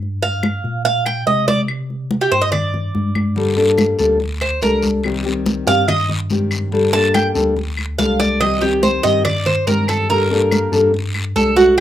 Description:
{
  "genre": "latin, Cuban son and guajira",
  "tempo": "143 BPM",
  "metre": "4/4",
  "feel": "straight",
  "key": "G minor",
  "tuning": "A4 = 441 Hz",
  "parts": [
    { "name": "mellow tine electric piano", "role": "bass", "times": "0.0-11.8 s", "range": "C2 to C3", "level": "-23 LUFS", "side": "equal", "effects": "medium stereo tremolo" },
    { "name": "congas", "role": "percussion", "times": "0.0-11.8 s", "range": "none", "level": "-21 LUFS", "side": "left 1 dB", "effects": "none" },
    { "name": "Cuban tres", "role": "arpeggios", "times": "0.2-11.8 s", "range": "F#4 to A5", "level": "-16 LUFS", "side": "right 3 dB", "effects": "plate reverb" },
    { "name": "claves", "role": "percussion", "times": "0.4-11.8 s", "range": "none", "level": "-28 LUFS", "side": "left 4 dB", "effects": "none" },
    { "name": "nylon-string guitar", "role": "accompaniment", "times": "3.4-11.8 s", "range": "C3 to A4", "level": "-18 LUFS", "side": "left 3 dB", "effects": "plate reverb" },
    { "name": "guiro", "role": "percussion", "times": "3.4-11.8 s", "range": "none", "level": "-29 LUFS", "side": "left 3 dB", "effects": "none" }
  ],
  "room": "moderate studio reverb, RT60 0.5 s",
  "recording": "rough home demo mix",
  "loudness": "-14 LUFS",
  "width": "side -11 dB against mid",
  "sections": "0.0-11.8 A section",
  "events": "Cuban tres solo 0.0-11.8; drum fill 3.2",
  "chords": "0.0 Gm; 1.7 C5; 3.4 Gmadd9; 5.0 Cm; 6.7 Gmadd9; 8.4 Cm; 10.1 Gmadd9"
}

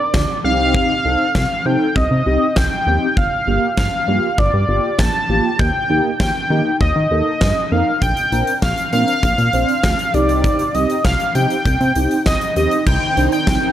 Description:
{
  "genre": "synth-pop",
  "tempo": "99 BPM",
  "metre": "4/4",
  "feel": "straight",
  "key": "unclear",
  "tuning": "A4 = 441 Hz",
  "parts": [
    { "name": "octave-doubled lead", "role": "melody", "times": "0.0-13.7 s", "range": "D5 to A5", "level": "-18 LUFS", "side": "equal", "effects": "chorus" },
    { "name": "mellow synth brass", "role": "accompaniment", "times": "0.0-13.4 s", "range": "Bb3 to C5", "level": "-21 LUFS", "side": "equal", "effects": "chorus" },
    { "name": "chorused synth bass", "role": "bass", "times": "0.1-13.6 s", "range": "G1 to Eb3", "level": "-19 LUFS", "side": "equal", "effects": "none" },
    { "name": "huge arena drum kit", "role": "drums", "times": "0.1-13.6 s", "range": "crash cymbal, hi-hat, kick drum, snare drum", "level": "-21 LUFS", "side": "equal", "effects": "none" },
    { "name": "phased string machine", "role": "sustained chords", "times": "12.9-13.7 s", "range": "Eb3 to Eb4", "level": "-22 LUFS", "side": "right 1 dB", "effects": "ensemble chorus, phaser" }
  ],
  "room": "light reverb, small room reverb",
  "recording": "dry, gritty hardware recording",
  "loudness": "-14 LUFS",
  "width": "side -11 dB against mid",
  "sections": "0.0-12.9 A section",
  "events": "none",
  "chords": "0.4 Cm; 3.2 Gm7; 5.6 Eb; 8.0 Bbadd9; 10.1 Cm; 12.9 Cmadd9"
}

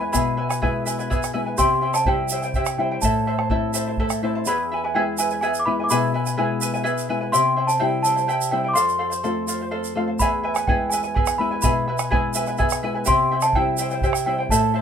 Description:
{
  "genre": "andean folk, Andean ensemble",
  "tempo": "84 BPM (dotted quarters)",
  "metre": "6/8",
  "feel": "straight",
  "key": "unclear",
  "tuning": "A4 = 440 Hz",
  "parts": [
    { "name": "celesta", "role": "melody", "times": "0.0-14.8 s", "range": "G5 to D6", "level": "-23 LUFS", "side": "equal", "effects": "none" },
    { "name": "charango", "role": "accompaniment", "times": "0.0-14.8 s", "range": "E4 to A5", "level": "-25 LUFS", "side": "right 2 dB", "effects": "none" },
    { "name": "nylon-string guitar", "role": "accompaniment", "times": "0.0-14.8 s", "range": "E2 to F4", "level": "-26 LUFS", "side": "left 5 dB", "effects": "none" },
    { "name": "bombo", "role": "percussion", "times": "0.1-4.2, 10.2-14.8 s", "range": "none", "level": "-25 LUFS", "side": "right 1 dB", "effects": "none" },
    { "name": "tube shaker", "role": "percussion", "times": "0.1-14.6 s", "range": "none", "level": "-30 LUFS", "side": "right 6 dB", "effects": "none" }
  ],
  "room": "light reverb",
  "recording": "minimal, uncompressed stereo recording",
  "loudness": "-19 LUFS",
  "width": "side -8 dB against mid",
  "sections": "0.0-4.5 A section; 4.5-14.8 A section",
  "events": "none",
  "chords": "0.0 E; 1.6 C; 3.0 Am; 4.5 E; 7.3 C; 8.8 F; 10.2 E; 13.1 C"
}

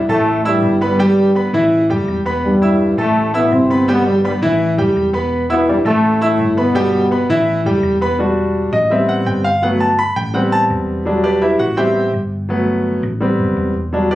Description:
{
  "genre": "latin",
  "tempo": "167 BPM",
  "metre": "4/4",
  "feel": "straight",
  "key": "unclear",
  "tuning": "A4 = 440 Hz",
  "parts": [
    { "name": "clear concert grand piano", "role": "accompaniment", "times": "0.0-14.2 s", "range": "E3 to E6", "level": "-15 LUFS", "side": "equal", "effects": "none" },
    { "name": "hollow-body short-scale fingered electric bass", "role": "bass", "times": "0.0-14.2 s", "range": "E1 to A1", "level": "-23 LUFS", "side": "equal", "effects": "none" },
    { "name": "dark trombone section", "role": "melody", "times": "0.1-7.3 s", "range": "G2 to E4", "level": "-15 LUFS", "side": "equal", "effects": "plate reverb" }
  ],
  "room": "light reverb",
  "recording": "recorded on a phone in the room, club ambience, faint mains hum",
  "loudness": "-13 LUFS",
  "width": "side -15 dB against mid",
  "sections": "0.0-8.2 A section; 8.2-14.2 B section",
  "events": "grand piano solo 8.2-14.2",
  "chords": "0.3 A5; 2.4 Em; 3.2 Am7; 4.6 A5; 5.3 Em; 6.0 A5; 8.2 Em7; 8.9 Am7; 9.6 Gmaj7; 10.3 Am7; 11.1 Em7; 11.8 Am7; 12.5 Gmaj7; 13.2 Am7"
}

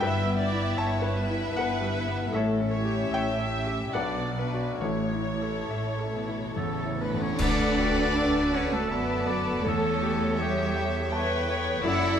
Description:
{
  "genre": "classical, romantic movement for piano and orchestra",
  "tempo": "67-83 BPM",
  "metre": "3/4",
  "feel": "rubato",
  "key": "unclear",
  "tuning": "A4 = 439 Hz",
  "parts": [
    { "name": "clear concert grand piano", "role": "melody", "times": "0.0-12.2 s", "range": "A1 to A5", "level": "-30 LUFS", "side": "left 3 dB", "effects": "none" },
    { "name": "warm chamber violin section", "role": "melody", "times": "0.0-12.2 s", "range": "A4 to G5", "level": "-38 LUFS", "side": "left 3 dB", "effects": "none" },
    { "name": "warm chamber violin section", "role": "second line", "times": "0.0-12.2 s", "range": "B3 to E5", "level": "-36 LUFS", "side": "left 2 dB", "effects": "none" },
    { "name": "rich chamber viola section", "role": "accompaniment", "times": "0.0-12.2 s", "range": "G4 to E5", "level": "-33 LUFS", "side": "right 1 dB", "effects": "none" },
    { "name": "dark chamber cello section", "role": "bass", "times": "0.0-12.2 s", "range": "G2 to E4", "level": "-32 LUFS", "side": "right 2 dB", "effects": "none" },
    { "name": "warm chamber double bass section", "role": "bass", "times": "0.0-12.2 s", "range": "F#1 to F#2", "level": "-32 LUFS", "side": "right 2 dB", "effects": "none" },
    { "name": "cymbal swell, clash cymbals and concert bass drum", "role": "percussion", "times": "4.8-8.9 s", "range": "none", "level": "-35 LUFS", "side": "equal", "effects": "none" },
    { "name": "warm oboe", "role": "second line", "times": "6.6-12.2 s", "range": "G4 to E5", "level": "-34 LUFS", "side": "right 2 dB", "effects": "none" },
    { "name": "bright clarinet", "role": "second line", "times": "7.4-12.2 s", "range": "A4 to E5", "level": "-36 LUFS", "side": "equal", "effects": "none" },
    { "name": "bright small flute group", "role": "second line", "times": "7.4-12.2 s", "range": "E5 to A5", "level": "-36 LUFS", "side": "equal", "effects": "none" },
    { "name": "mellow French horn section", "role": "sustained chords", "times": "7.4-12.2 s", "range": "F#4 to D5", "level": "-36 LUFS", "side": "equal", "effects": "none" }
  ],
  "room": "moderate scoring stage reverb, RT60 1.6 s",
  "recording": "none",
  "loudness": "-24 LUFS",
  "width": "side -8 dB against mid",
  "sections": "0.0-7.4 A section; 7.4-12.2 B section",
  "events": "band accent 7.4-8.2",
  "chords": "0.0 Em/G; 2.3 A7; 3.9 Bm; 4.8 A; 7.4 D; 9.6 A7/E"
}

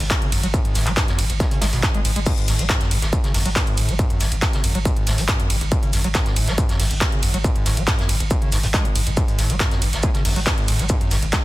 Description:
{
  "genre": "driving peak-time techno",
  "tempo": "139 BPM",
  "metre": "4/4",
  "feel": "straight",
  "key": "unclear",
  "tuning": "A4 = 436 Hz",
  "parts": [
    { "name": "overdriven acid bass", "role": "riff", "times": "0.0-11.4 s", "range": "G#1 to G#3", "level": "-26 LUFS", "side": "equal", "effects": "lush chorus, cassette tape, sidechain pumping, tape echo" },
    { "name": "saturated sub bass", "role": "bass", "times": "0.0-11.3 s", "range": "G#1", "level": "-22 LUFS", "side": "equal", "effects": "overdrive, sidechain pumping, low-pass filter" },
    { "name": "punchy analog drum machine", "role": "drums", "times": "0.0-11.4 s", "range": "crash cymbal, handclaps, hi-hat, ride cymbal", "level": "-25 LUFS", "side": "right 1 dB", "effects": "sidechain pumping on hats, small room ambience, sidechain pumping on cymbals" },
    { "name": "electronic kick drum", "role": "drums", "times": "0.1-11.4 s", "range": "none", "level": "-20 LUFS", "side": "equal", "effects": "distortion, overdrive, small room ambience" },
    { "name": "vintage brush drum kit", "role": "drums", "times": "0.1-11.4 s", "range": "hi-hat, shaker, snare drum", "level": "-31 LUFS", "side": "equal", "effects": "sidechain pumping on hats, high-pass filter on hats, small room ambience, high-pass filter on snare, sidechain pumping on perc, high-pass filter on perc, high-pass filter on room" }
  ],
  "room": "studio ambience",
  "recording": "dense, heavily limited modern master",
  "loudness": "-17 LUFS",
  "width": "side -17 dB against mid",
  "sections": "0.0-11.4 A section",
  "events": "none",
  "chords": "none"
}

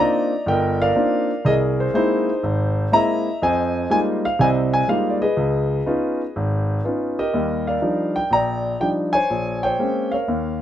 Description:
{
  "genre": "solo jazz",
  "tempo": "122 BPM",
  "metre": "4/4",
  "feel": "swing 68% on 8ths",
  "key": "Eb major",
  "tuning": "A4 = 440 Hz",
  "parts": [
    { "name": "warm concert grand piano", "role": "solo", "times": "0.0-10.6 s", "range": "G1 to Bb5", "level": "-18 LUFS", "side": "equal", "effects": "none" }
  ],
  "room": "light reverb",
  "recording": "minimal, uncompressed stereo recording",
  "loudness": "-18 LUFS",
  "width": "side -11 dB against mid",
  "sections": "0.0-7.3 A section; 7.3-10.6 B section",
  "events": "none",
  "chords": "0.0 Cm11; 1.4 C7alt; 3.4 Fm11; 5.4 Db9; 7.3 Ebmaj9; 9.3 Bbm9"
}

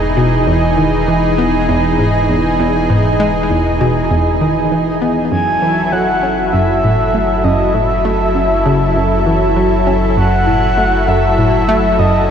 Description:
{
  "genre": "ambient, sequencer-driven space music",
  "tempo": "99 BPM",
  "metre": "4/4",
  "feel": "straight",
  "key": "F# dorian",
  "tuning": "A4 = 440 Hz",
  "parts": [
    { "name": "lush unison pad", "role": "sustained chords", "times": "0.0-12.3 s", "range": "E3 to A4", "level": "-15 LUFS", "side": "equal", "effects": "chorus, shimmer reverb" },
    { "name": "analog pluck", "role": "riff", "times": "0.0-12.3 s", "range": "E2 to C#4", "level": "-16 LUFS", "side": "equal", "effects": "chorus, ping-pong delay" },
    { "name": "warm sub bass", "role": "bass", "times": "0.0-12.3 s", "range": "E1 to F#1", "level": "-21 LUFS", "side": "equal", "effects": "none" },
    { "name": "breathy flute-like synth lead", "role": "melody", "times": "5.3-12.3 s", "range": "D#5 to G#5", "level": "-17 LUFS", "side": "equal", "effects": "chorus, shimmer reverb, ping-pong delay" }
  ],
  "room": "wet cathedral reverb, RT60 7.2 s",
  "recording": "in a vast, echoing space, nothing above 10.4 kHz",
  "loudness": "-11 LUFS",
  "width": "side -8 dB against mid",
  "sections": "0.0-12.3 A section",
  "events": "none",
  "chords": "0.0 Emaj7; 5.3 F#m7"
}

